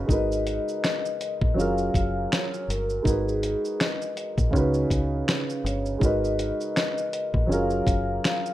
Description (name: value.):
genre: lo-fi hip hop.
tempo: 81 BPM.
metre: 4/4.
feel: swing 56% on 16ths.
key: G# dorian.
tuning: A4 = 440 Hz.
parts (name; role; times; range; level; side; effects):
dark upright piano; accompaniment; 0.0-8.5 s; C#3 to B4; -27 LUFS; right 2 dB; cassette tape.
deep dub fingered electric bass; bass; 0.0-8.2 s; F#1 to C#2; -28 LUFS; equal; none.
vibraphone with soft mallets; melody; 0.1-8.5 s; G#4 to E#5; -30 LUFS; left 3 dB; none.
lo-fi sampler-style drum kit; drums; 0.1-8.5 s; finger snaps, hi-hat, kick drum, shaker, snare drum; -26 LUFS; equal; none.
room: little or no reverb.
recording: rough home demo mix.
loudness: -23 LUFS.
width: side -14 dB against mid.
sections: 0.0-8.5 A section.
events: none.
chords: 0.1 G#m9; 1.6 F#maj7; 3.0 G#m9; 4.5 C#9sus4; 6.0 G#m9; 7.5 F#maj7.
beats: | 0.09 0.83 1.57 2.31 | 3.05 3.79 4.53 5.27 | 6.01 6.75 7.49 8.23.